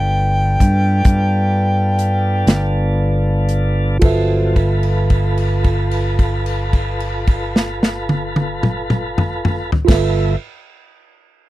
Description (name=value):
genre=slow blues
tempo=37-46 BPM (dotted quarters)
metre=12/8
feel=straight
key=G mixolydian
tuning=A4 = 439 Hz
part: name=warm harmonica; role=melody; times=0.0-3.0 s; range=G5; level=-20 LUFS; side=equal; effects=overdrive
part: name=tine electric piano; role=accompaniment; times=0.0-10.4 s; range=F4 to F5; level=-23 LUFS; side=moving between right 4 dB and right 12 dB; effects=auto-pan
part: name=tonewheel organ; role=sustained chords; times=0.0-10.4 s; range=F#3 to E5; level=-24 LUFS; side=equal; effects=slow rotary speaker
part: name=fingered electric bass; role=bass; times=0.0-10.3 s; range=G1 to G2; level=-18 LUFS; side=equal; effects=none
part: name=natural country drum kit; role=drums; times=0.6-10.1 s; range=crash cymbal, hi-hat, kick drum, snare drum, toms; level=-17 LUFS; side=equal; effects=none
room=little or no reverb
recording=dry, close 1970s-style studio recording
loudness=-14 LUFS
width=side -16 dB against mid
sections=0.0-4.0 A section; 4.0-10.5 B section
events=slowing down 0.0-4.0; held note 4.0-9.9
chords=0.0 G7; 4.0 G13